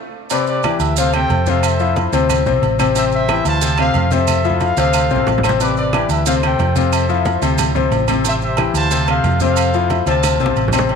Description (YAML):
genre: latin, salsa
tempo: 181 BPM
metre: 4/4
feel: straight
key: unclear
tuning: A4 = 443 Hz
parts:
  - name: warm trumpet section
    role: melody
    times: 0.3-10.7 s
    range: E4 to A5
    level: -22 LUFS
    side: right 2 dB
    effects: none
  - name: clear grand piano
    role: accompaniment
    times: 0.3-11.0 s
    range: C3 to C5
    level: -17 LUFS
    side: left 8 dB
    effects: none
  - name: agogo bells and timbales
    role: percussion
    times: 0.3-11.0 s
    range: none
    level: -24 LUFS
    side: right 12 dB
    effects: none
  - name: congas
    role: percussion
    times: 0.3-11.0 s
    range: none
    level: -25 LUFS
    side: right 2 dB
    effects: none
  - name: maracas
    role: percussion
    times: 0.3-10.9 s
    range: none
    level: -28 LUFS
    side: right 19 dB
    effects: none
  - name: claves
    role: percussion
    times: 0.6-10.9 s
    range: none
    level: -30 LUFS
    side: right 16 dB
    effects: none
  - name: hollow-body short-scale fingered electric bass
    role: bass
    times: 0.8-11.0 s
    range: A1 to F2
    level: -19 LUFS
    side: right 2 dB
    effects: none
room: moderate echo chamber reverb, RT60 2.4 s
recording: 1960s-style stereo with parts hard left and right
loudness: -14 LUFS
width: side -6 dB against mid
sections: 0.3-10.9 A section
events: band accent 0.0-0.3; drum fill 4.3-5.6, 10.2-10.9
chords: 0.3 D13sus4; 1.0 Dm7; 1.6 Fmaj7; 2.3 D5; 3.0 Am7; 3.6 Dm7; 4.3 Fmaj7; 4.9 Dm7; 5.6 Am11; 6.3 Dm7; 6.9 Fmaj7; 7.6 D5; 8.2 Am7; 8.9 Dm7; 9.6 Fmaj7; 10.2 Dm7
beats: | 0.30 0.64 0.97 1.30 | 1.63 1.96 2.29 2.62 | 2.95 3.29 3.62 3.95 | 4.28 4.61 4.94 5.27 | 5.60 5.93 6.26 6.59 | 6.92 7.25 7.58 7.92 | 8.25 8.58 8.91 9.24 | 9.57 9.90 10.23 10.56 | 10.89